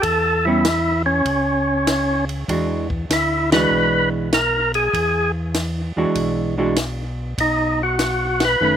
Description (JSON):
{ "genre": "soul jazz organ trio", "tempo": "98 BPM", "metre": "4/4", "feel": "swing 68% on 8ths", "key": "E mixolydian", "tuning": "A4 = 440 Hz", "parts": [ { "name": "percussive tonewheel organ", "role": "melody", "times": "0.0-8.8 s", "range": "C#4 to B4", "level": "-18 LUFS", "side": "equal", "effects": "overdrive, fast rotary speaker" }, { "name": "tonewheel organ", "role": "bass", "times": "0.0-8.8 s", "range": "F#1 to E2", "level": "-25 LUFS", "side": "equal", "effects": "slow rotary speaker" }, { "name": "compact cocktail drum kit", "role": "drums", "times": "0.0-8.5 s", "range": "hi-hat, kick drum, ride cymbal, snare drum", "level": "-26 LUFS", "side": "left 1 dB", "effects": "none" }, { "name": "vintage hollow-body jazz guitar", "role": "accompaniment", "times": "0.5-8.8 s", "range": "D#3 to F#4", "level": "-20 LUFS", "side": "right 2 dB", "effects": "none" } ], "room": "little or no reverb", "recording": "recorded outdoors, with no room sound", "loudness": "-17 LUFS", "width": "side -9 dB against mid", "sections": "0.0-8.8 A section", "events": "band accent 3.4-3.7, 8.3-8.6", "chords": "0.0 A; 2.5 E9; 7.4 B" }